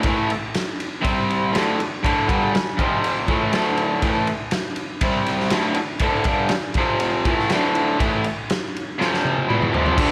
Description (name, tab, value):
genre	garage rock duo or trio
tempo	121 BPM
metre	4/4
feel	straight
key	D minor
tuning	A4 = 438 Hz
part	raw garage guitar	riff	0.0-10.1 s	D2 to C4	-23 LUFS	equal	overdrive, spring reverb
part	raw garage drum kit	drums	0.0-10.1 s	crash cymbal, kick drum, ride cymbal, snare drum, toms	-26 LUFS	equal	none
room	light reverb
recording	none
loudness	-21 LUFS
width	mono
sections	0.0-10.0 A section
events	drum fill 9.0-10.0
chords	0.0 N.C.; 1.0 C5; 1.5 D5; 2.8 F5; 3.3 D5; 5.0 C5; 5.5 D5; 6.8 F5; 7.2 D5; 9.0 F5; 9.5 Cadd11/E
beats	| 0.04 0.54 1.03 1.53 | 2.03 2.53 3.03 3.53 | 4.02 4.52 5.02 5.51 | 6.01 6.51 7.00 7.50 | 7.99 8.49 8.98 9.47 | 9.96